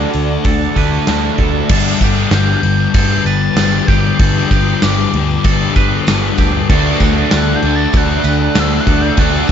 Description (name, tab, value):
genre	rock, shoegaze and dream pop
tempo	96 BPM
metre	4/4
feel	straight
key	G major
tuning	A4 = 440 Hz
part	glassy FM pad	sustained chords	0.0-9.5 s	B4 to E6	-27 LUFS	equal	ensemble chorus, built-in reverb
part	twangy electric guitar	arpeggios	0.0-9.5 s	F#4 to B4	-25 LUFS	right 12 dB	wide subtle chorus, tape echo
part	crunchy overdriven guitar	riff	0.0-1.7, 6.7-9.5 s	D3 to A4	-19 LUFS	right 16 dB	reverse reverb
part	thick fuzz guitar	riff	0.0-9.5 s	G2 to D4	-17 LUFS	left 10 dB	distortion, ensemble chorus
part	vintage muted picked electric bass	bass	0.0-9.5 s	G1 to D2	-17 LUFS	right 1 dB	none
part	gated 80s drum kit	drums	0.1-9.5 s	crash cymbal, hi-hat, kick drum, snare drum	-15 LUFS	equal	none
part	tambourine	percussion	2.0-9.5 s	none	-31 LUFS	right 9 dB	none
part	reedy FM lead	melody	2.3-9.5 s	D6 to A6	-22 LUFS	right 2 dB	chorus, tape echo
room	small room ambience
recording	nothing above 7.6 kHz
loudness	-11 LUFS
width	side -8 dB against mid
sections	0.0-1.7 A section; 1.7-9.5 A section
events	none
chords	0.0 D; 1.7 Gadd9; 6.7 Dadd9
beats	0.46 1.08 | 1.71 2.33 2.96 3.58 | 4.20 4.83 5.45 6.07 | 6.70 7.32 7.94 8.57 | 9.19